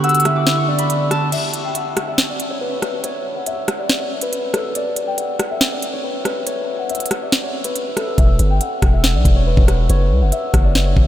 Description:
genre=hip hop, drill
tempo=140 BPM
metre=4/4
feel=half-time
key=unclear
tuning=A4 = 440 Hz
part: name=Celtic harp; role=melody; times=0.0-11.1 s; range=A4 to F#6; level=-22 LUFS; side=left 2 dB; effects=low-pass filter, diffuse ambient delay
part: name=warm velvety synth lead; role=second line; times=0.0-1.3 s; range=D5 to F#5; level=-27 LUFS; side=left 1 dB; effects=chorus, tremolo, diffuse ambient delay
part: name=overdriven tine electric piano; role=accompaniment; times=0.0-1.3 s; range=D3 to G4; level=-22 LUFS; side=right 3 dB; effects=none
part: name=drill drum kit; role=drums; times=0.0-11.1 s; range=crash cymbal, hi-hat, kick drum, rim click, snare drum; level=-19 LUFS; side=equal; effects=none
part: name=long sustained 808-style bass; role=bass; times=8.2-11.1 s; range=E1 to C#2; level=-15 LUFS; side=equal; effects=none
room=moderate huge ambient reverb, RT60 7.8 s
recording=dreamy mix soaked in reverb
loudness=-16 LUFS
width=side -12 dB against mid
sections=0.0-1.3 A section; 1.3-11.1 B section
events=break 0.0-1.3, 1.3-8.2; filter sweep on harp 1.3-11.1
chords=0.0 G; 1.3 N.C.; 8.2 Em; 9.9 F#m

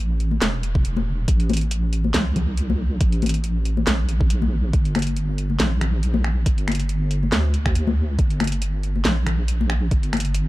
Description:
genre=deep dubstep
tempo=139 BPM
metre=4/4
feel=swing 55% on 16ths, half-time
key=unclear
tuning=A4 = 440 Hz
part: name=deep soft wobble bass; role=bass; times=0.0-10.5 s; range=E1 to D2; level=-21 LUFS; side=equal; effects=chorus
part: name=garage drum kit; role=drums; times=0.2-10.4 s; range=finger snaps, hi-hat, snare drum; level=-27 LUFS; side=right 1 dB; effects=none
part: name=congas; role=percussion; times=0.3-10.2 s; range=none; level=-27 LUFS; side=left 4 dB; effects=none
part: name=electronic kick drum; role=drums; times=0.8-10.0 s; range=none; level=-19 LUFS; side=equal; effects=overdrive
room=little or no reverb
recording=dark, warm production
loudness=-19 LUFS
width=side -17 dB against mid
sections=0.0-10.5 A section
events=none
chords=none

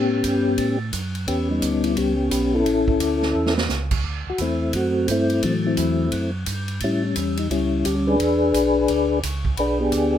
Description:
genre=soul jazz organ trio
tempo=174 BPM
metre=4/4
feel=swing 63% on 8ths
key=A mixolydian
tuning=A4 = 439 Hz
part: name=percussive tonewheel organ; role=melody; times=0.0-10.2 s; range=E3 to B4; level=-19 LUFS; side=left 2 dB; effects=slow rotary speaker, chorus vibrato
part: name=tonewheel organ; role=bass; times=0.0-10.2 s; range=A1 to A2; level=-26 LUFS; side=right 1 dB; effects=overdrive, slow rotary speaker
part: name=swinging big-band drum kit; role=drums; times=0.2-10.0 s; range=crash cymbal, hi-hat, kick drum, ride cymbal, snare drum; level=-29 LUFS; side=right 3 dB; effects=none
room=little or no reverb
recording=minimal, uncompressed stereo recording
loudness=-19 LUFS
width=side -10 dB against mid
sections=0.0-10.2 A section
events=drum fill 3.4-3.7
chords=0.0 A9; 4.0 D9; 6.8 A7; 8.2 E7

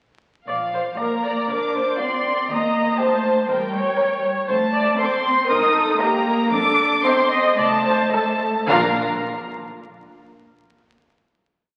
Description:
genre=quick classical-period movement for string orchestra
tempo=106-123 BPM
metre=4/4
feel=rubato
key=Bb major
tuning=A4 = 441 Hz
part: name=rich chamber violin section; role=melody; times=0.5-9.0 s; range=F5 to Eb6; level=-25 LUFS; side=equal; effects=none
part: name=rich studio viola section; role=accompaniment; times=0.5-9.0 s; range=D4 to Eb5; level=-24 LUFS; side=equal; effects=none
part: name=warm chamber cello section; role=bass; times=0.5-9.0 s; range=F3 to Eb4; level=-28 LUFS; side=equal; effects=none
part: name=warm studio double bass section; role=bass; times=0.5-9.0 s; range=F1 to G2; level=-39 LUFS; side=equal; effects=none
part: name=rich chamber violin section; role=second line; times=1.0-9.0 s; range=F4 to F5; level=-29 LUFS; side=equal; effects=none
room=wet concert hall reverb, RT60 2.2 s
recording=very old 78 rpm record, vinyl crackle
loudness=-20 LUFS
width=mono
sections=0.5-8.7 A section; 8.7-10.8 final chord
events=none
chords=0.5 Bb; 2.5 Eb; 3.5 Edim7; 4.5 F; 5.5 Eb/G; 6.5 F7; 8.7 Bb

